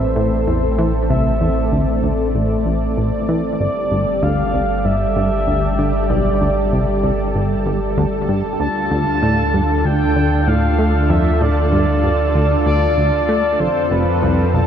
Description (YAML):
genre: ambient, sequencer-driven space music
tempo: 96 BPM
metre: 4/4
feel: straight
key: unclear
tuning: A4 = 440 Hz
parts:
  - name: expressive synth lead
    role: melody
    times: 0.0-14.7 s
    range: A4 to A5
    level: -22 LUFS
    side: equal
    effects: wide subtle chorus, ping-pong delay
  - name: lush unison pad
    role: sustained chords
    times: 0.0-14.7 s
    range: D3 to E5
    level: -20 LUFS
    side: equal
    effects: chorus
  - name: plucky analog bass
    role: riff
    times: 0.0-14.6 s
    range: F1 to A3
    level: -20 LUFS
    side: equal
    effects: ping-pong delay
  - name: warm sub bass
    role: bass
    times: 0.0-14.7 s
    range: G1 to F2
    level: -21 LUFS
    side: equal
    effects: none
  - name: bubbling stepped-filter texture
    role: texture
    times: 0.0-14.7 s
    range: A4 to A5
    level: -34 LUFS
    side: right 2 dB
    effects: chorus, built-in reverb
room: wet huge ambient reverb, RT60 8.8 s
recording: dark, warm production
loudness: -15 LUFS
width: side -8 dB against mid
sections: 0.0-14.7 A section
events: fade-in on synth texture 0.0-14.7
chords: 0.0 Am; 3.6 Gsus2; 8.6 Dm; 13.6 F